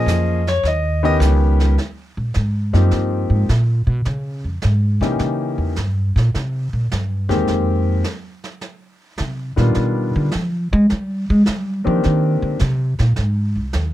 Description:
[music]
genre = jazz piano trio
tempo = 105 BPM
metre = 4/4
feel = swing 69% on 8ths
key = Eb major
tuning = A4 = 438 Hz
[part]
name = warm concert grand piano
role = melody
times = 0.0-12.6 s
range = Eb3 to Eb5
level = -20 LUFS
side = left 3 dB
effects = none
[part]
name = upright bass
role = bass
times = 0.0-13.9 s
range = C2 to Ab3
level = -17 LUFS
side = equal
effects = none
[part]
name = jazz brush drum kit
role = drums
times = 0.1-13.9 s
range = brushed snare drum, hi-hat, snare drum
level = -31 LUFS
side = right 4 dB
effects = none
[sound]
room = light reverb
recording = close, detailed microphones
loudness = -16 LUFS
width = side -14 dB against mid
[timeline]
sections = 0.0-1.8 A section; 1.8-13.9 A section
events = grand piano solo 0.0-1.8; upright bass solo 1.8-13.9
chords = 0.0 Bbm7; 0.6 Ebaug7; 1.8 Eb69; 4.1 Bbm9 (rootless); 5.2 Eb7b9; 6.3 Abmaj9; 8.6 Bbsus2; 9.8 G7b13; 10.9 Cm9; 13.2 Cm

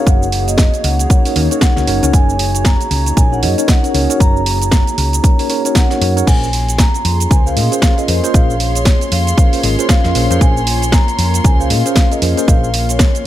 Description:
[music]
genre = deep house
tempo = 116 BPM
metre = 4/4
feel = swing 60% on 16ths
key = Bb minor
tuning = A4 = 440 Hz
[part]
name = vibraphone with soft mallets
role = melody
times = 0.0-13.3 s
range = Db5 to Bb5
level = -21 LUFS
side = equal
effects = vintage 12-bit sampler grit, ping-pong delay
[part]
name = dark analog pad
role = sustained chords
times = 0.0-13.3 s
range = Bb3 to C6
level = -24 LUFS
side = equal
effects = chorus, sidechain pumping
[part]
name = mellow tine electric piano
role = stabs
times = 0.0-12.7 s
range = Db4 to Eb5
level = -20 LUFS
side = equal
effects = medium stereo tremolo, sidechain pumping, tape echo
[part]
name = hollow-body short-scale fingered electric bass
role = bass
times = 0.1-13.1 s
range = Gb1 to Bb2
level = -17 LUFS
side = equal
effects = sidechain pumping
[part]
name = electronic kick drum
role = drums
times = 0.1-13.1 s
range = none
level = -12 LUFS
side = equal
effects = none
[part]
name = house drum kit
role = drums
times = 0.1-13.2 s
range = crash cymbal, hi-hat, shaker, snare drum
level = -19 LUFS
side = right 1 dB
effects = none
[part]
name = dark studio violin section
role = texture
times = 6.3-13.3 s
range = Db5 to C6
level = -28 LUFS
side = left 1 dB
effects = sidechain pumping
[sound]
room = little or no reverb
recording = none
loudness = -11 LUFS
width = side -13 dB against mid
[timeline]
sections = 0.0-13.3 A section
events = none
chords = 0.0 Gb6; 6.3 Bbm9

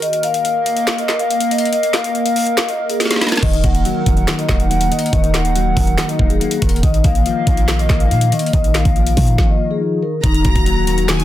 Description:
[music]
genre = hip hop, trap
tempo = 141 BPM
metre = 4/4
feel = half-time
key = Eb minor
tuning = A4 = 442 Hz
[part]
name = vibraphone with soft mallets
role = melody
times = 0.0-11.2 s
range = Eb4 to Gb5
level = -20 LUFS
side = left 2 dB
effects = low-pass filter, tape echo
[part]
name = hollow soft pad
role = sustained chords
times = 0.0-11.2 s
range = Eb3 to Gb5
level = -24 LUFS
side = right 3 dB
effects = chorus
[part]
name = trap drum kit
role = drums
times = 0.0-11.2 s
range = crash cymbal, handclaps, hi-hat, kick drum, snare drum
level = -17 LUFS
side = equal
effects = none
[part]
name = clean electric guitar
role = accompaniment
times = 3.4-11.2 s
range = Eb3 to Bb3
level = -21 LUFS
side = left 4 dB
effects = ensemble chorus, low-pass filter
[part]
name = clean 808-style bass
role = bass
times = 3.4-11.2 s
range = Eb1 to Bb2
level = -18 LUFS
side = equal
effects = none
[part]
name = warm studio violin section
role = second line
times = 10.2-11.2 s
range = Ab5 to Bb5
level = -22 LUFS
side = equal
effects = tape echo
[sound]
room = little or no reverb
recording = dense, heavily limited modern master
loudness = -13 LUFS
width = side -13 dB against mid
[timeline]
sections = 0.0-10.2 A section; 10.2-11.2 B section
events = break 0.0-3.4; drum fill 3.0-3.4; stop 9.4-10.2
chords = 0.0 Bbsus4; 3.4 Ebm; 6.8 Bbsus4; 10.2 Ebm

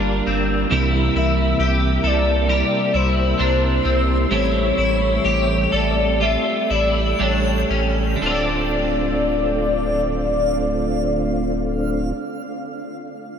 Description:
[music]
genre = dream pop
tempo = 58-68 BPM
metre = 4/4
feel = straight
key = D minor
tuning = A4 = 439 Hz
[part]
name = warm velvety synth lead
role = melody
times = 0.0-12.1 s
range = C5 to F5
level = -23 LUFS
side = left 2 dB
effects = chorus, ping-pong delay
[part]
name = twelve-string electric guitar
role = accompaniment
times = 0.0-12.3 s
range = A2 to Bb4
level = -27 LUFS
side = right 3 dB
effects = tremolo, ensemble chorus
[part]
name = mellow tonewheel organ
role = sustained chords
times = 0.0-12.1 s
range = C3 to F4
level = -24 LUFS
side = right 1 dB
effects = chorus vibrato, slow rotary speaker
[part]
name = electric guitar at the edge of break-up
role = arpeggios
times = 0.0-12.2 s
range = C4 to D5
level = -24 LUFS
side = left 3 dB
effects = ensemble chorus, ping-pong delay
[part]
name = warm sub bass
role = bass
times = 0.0-12.1 s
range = D1 to C2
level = -23 LUFS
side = equal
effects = none
[part]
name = backwards swelling texture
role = texture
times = 3.2-12.1 s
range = C4 to G5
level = -34 LUFS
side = equal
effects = built-in reverb, ping-pong delay
[sound]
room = wet huge ambient reverb, RT60 8.0 s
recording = dreamy mix soaked in reverb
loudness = -17 LUFS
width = side -7 dB against mid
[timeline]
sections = 0.0-8.2 A section; 8.2-12.4 B section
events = slowing down 0.7-8.2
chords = 0.0 Gm7; 0.7 C7; 4.3 A7; 8.2 Dm7

